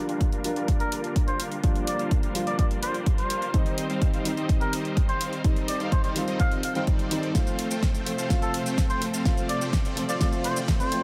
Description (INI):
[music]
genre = EDM, festival progressive house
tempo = 126 BPM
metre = 4/4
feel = straight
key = G minor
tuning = A4 = 442 Hz
[part]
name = felt-muted upright piano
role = accompaniment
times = 0.0-11.0 s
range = Eb3 to F4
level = -34 LUFS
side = equal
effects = sidechain pumping
[part]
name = rich studio string section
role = sustained chords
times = 0.0-11.0 s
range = C3 to D5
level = -38 LUFS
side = equal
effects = vintage 12-bit sampler grit, sidechain pumping, low-pass filter
[part]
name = supersaw chords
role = riff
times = 0.0-11.0 s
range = G3 to G5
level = -36 LUFS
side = equal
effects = analog chorus, sidechain pumping, low-pass filter
[part]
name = pop drum kit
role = drums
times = 0.1-11.0 s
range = hi-hat, shaker, snare drum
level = -36 LUFS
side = equal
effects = none
[part]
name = electronic kick drum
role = drums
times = 0.2-10.8 s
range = none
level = -27 LUFS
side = equal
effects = none
[part]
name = trumpet with cup mute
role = melody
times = 0.8-11.0 s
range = A4 to F5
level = -34 LUFS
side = equal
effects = dub echo
[part]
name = riser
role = sound effects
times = 7.4-11.0 s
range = none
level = barely audible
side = none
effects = none
[sound]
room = light reverb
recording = none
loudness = -26 LUFS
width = mono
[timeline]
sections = 0.0-11.0 A section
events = build-up 0.0-11.0; filter sweep on supersaw synth 0.0-11.0; filter sweep on string section 0.0-11.0; drum fill 7.3-11.0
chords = 0.0 Gm7; 3.5 Cm; 7.3 F/C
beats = 0.21 0.68 1.16 | 1.64 2.11 2.59 3.06 | 3.54 4.02 4.49 4.97 | 5.45 5.92 6.40 6.87 | 7.35 7.83 8.30 8.78 | 9.26 9.73 10.21 10.68